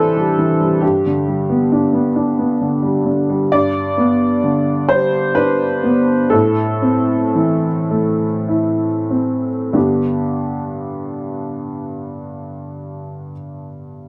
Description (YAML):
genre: neoclassical minimalist piano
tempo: 45-68 BPM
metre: 3/4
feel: rubato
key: G major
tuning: A4 = 435 Hz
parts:
  - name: clear upright piano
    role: solo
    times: 0.0-14.1 s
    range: G2 to D5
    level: -18 LUFS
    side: equal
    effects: none
room: wet booth ambience, RT60 0.3 s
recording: dark, warm production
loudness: -17 LUFS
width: mono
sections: 0.0-3.5 A section; 3.5-9.7 B section; 9.7-13.7 C section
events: slowing down 2.2-9.7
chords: 0.0 Cadd9; 0.8 G; 6.3 Am; 9.7 G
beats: | 0.82 1.72 2.61 | 3.51 4.43 5.36 | 6.33 7.35 8.48 | 9.74 11.05 12.37